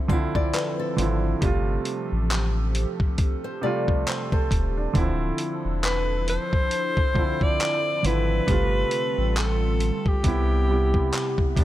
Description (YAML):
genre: contemporary R&B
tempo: 68 BPM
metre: 4/4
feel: swing 58% on 16ths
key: D dorian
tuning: A4 = 443 Hz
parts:
  - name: warm grand piano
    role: accompaniment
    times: 0.0-11.6 s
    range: C3 to C5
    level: -28 LUFS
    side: right 3 dB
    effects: none
  - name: hollow soft pad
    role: sustained chords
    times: 0.0-11.6 s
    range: C3 to A4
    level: -33 LUFS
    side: equal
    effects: chorus, sidechain pumping
  - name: nylon-string guitar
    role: arpeggios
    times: 0.0-4.9 s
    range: A4 to F5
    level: -31 LUFS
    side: left 6 dB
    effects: ping-pong delay
  - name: dusty soul sampler-style drum kit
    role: drums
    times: 0.1-11.6 s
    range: handclaps, hi-hat, kick drum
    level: -25 LUFS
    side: equal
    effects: none
  - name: saturated sub bass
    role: bass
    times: 1.0-11.6 s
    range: D1 to Eb2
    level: -24 LUFS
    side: equal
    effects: none
  - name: warm alto saxophone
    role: melody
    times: 5.9-11.6 s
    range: G4 to D5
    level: -26 LUFS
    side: left 1 dB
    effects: ping-pong delay
room: little or no reverb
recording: none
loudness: -21 LUFS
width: side -14 dB against mid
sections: 0.0-11.6 A section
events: none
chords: 0.0 Dm9; 1.4 G9sus4; 4.9 Dm9; 8.5 G9sus4; 10.2 Cmaj7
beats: 0.54 | 1.42 2.30 3.19 4.07 | 4.95 5.83 6.71 7.60 | 8.48 9.36 10.24 11.13